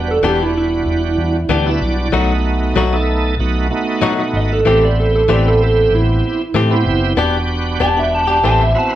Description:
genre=blues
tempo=95 BPM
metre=4/4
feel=straight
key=E minor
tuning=A4 = 440 Hz
part: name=electric slide guitar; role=second line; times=0.0-8.9 s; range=E4 to A5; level=-16 LUFS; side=right 2 dB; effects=none
part: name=bright tonewheel organ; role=accompaniment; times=0.0-9.0 s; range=G3 to G5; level=-20 LUFS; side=right 3 dB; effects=slow rotary speaker, overdrive, chorus vibrato
part: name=vintage muted fingered electric bass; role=bass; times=0.0-8.7 s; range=E1 to B2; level=-18 LUFS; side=equal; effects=none
part: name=direct-recorded clean electric guitar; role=stabs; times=0.2-8.6 s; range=E3 to G4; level=-18 LUFS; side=left 5 dB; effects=none
room=moderate large studio reverb, RT60 0.9 s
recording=band playing live in one room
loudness=-13 LUFS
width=side -12 dB against mid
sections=0.0-9.0 A section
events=electric slide guitar solo 0.0-9.0; tonewheel organ fill 1.2-2.1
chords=0.0 Em7; 2.1 B7; 4.7 Am7; 7.2 Em7; 8.4 Am7

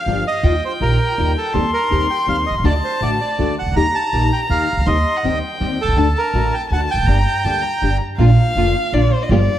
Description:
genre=tango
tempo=162 BPM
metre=3/4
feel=rubato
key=G minor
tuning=A4 = 440 Hz
part: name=bandoneon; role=melody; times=0.0-8.0 s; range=A4 to Bb5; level=-21 LUFS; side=right 2 dB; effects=tape echo
part: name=warm violin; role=second line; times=0.0-9.6 s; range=C5 to C6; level=-22 LUFS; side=left 2 dB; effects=none
part: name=nylon-string guitar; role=accompaniment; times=0.1-9.4 s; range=D3 to G4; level=-23 LUFS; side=left 4 dB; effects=ensemble chorus
part: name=upright bass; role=bass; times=0.1-9.5 s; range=E1 to Eb2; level=-18 LUFS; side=right 1 dB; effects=none
part: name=warm studio string section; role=stabs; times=8.2-9.5 s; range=G3 to F4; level=-23 LUFS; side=right 4 dB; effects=none
room=moderate plate reverb, RT60 2.4 s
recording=dreamy mix soaked in reverb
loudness=-15 LUFS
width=side -12 dB against mid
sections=0.0-8.2 A section; 8.2-9.6 B section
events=violin solo 8.2-9.6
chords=0.4 Ebadd9; 1.5 Cm/Eb; 2.6 D; 3.8 Eb; 4.9 Cm/Eb; 6.0 D; 7.1 Gm; 8.2 Bb

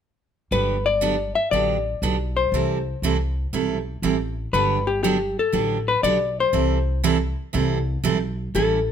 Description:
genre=country, western swing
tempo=120 BPM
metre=4/4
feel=swing 69% on 8ths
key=G major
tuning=A4 = 443 Hz
part: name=hollow-body jazz guitar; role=melody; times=0.5-8.9 s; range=G4 to E5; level=-22 LUFS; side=left 5 dB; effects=none
part: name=picked steel-string acoustic guitar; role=accompaniment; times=0.5-8.8 s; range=C3 to A4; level=-24 LUFS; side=right 7 dB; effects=none
part: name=upright bass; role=bass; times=0.5-8.9 s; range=G1 to C2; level=-26 LUFS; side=equal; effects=none
room=light reverb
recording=none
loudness=-20 LUFS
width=side -8 dB against mid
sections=0.5-4.5 A section; 4.5-8.9 B section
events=none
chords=0.5 Gmaj7; 2.5 C6; 4.5 Gmaj7; 6.5 C6

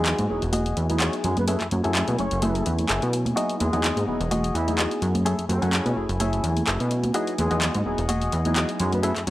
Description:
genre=filtered disco house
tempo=127 BPM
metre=4/4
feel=swing 54% on 16ths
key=E major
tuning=A4 = 438 Hz
part: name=mellow horn section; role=melody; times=0.0-9.1 s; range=C#3 to C#5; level=-33 LUFS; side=equal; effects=low-pass filter, analog delay
part: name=funky polysynth comp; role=accompaniment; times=0.0-9.1 s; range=F#3 to G#5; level=-30 LUFS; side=equal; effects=chorus, phaser, low-pass filter
part: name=rich chamber string section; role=sustained chords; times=0.0-9.3 s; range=A3 to G#5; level=-36 LUFS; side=left 2 dB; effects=low-pass filter
part: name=direct-recorded clean electric guitar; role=riff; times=0.0-9.2 s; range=F#4 to F#5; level=-30 LUFS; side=left 2 dB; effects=low-pass filter
part: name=plucky analog bass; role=bass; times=0.0-9.3 s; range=E1 to B2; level=-25 LUFS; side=equal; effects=low-pass filter
part: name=house drum kit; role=drums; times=0.1-9.3 s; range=handclaps, hi-hat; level=-28 LUFS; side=equal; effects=overdrive, studio reverb
part: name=tambourine and congas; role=percussion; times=0.1-9.3 s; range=none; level=-31 LUFS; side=right 2 dB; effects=low-pass filter on perc
room=small room ambience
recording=dry, gritty hardware recording, transformer saturation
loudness=-21 LUFS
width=side -16 dB against mid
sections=0.0-9.3 A section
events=filter sweep 0.0-9.3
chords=0.0 Emaj9; 1.5 F#m9; 3.4 Emaj9; 5.3 F#m9; 7.1 Emaj9

